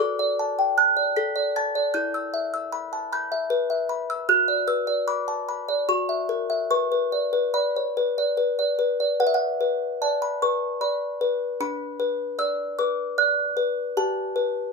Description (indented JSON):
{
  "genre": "classical, lullaby for music box",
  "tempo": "76 BPM",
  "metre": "3/4",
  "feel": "rubato",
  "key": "B minor",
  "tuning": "A4 = 435 Hz",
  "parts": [
    { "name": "music box", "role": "solo", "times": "0.0-14.7 s", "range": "D4 to B6", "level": "-22 LUFS", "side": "left 1 dB", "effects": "none" }
  ],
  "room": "light reverb",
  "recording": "none",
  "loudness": "-22 LUFS",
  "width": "side -4 dB against mid",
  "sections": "0.0-9.2 A section; 9.2-14.7 A section",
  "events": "none",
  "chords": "0.0 D/F#; 1.9 Em; 4.3 Bm/F#; 5.9 F#7; 6.7 Bm; 11.6 Bm/D; 14.0 G",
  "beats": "0.39 1.17 | 1.95 2.73 3.51 | 4.29 5.09 5.89 | 6.70 7.54 8.37 | 9.20 10.00 10.80 | 11.60 12.39 13.18 | 13.96"
}